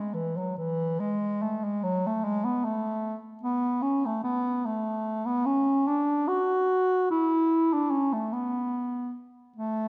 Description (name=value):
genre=classical, free, expressive piece for unaccompanied bass clarinet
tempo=49 BPM (dotted quarters)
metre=6/8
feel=rubato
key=unclear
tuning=A4 = 438 Hz
part: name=warm bass clarinet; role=solo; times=0.0-9.9 s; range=E3 to F#4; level=-28 LUFS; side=equal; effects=none
room=wet scoring stage reverb, RT60 1.6 s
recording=worn, warbling old tape, cassette tape, warbly pitch drift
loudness=-28 LUFS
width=mono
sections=0.0-9.9 A section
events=none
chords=none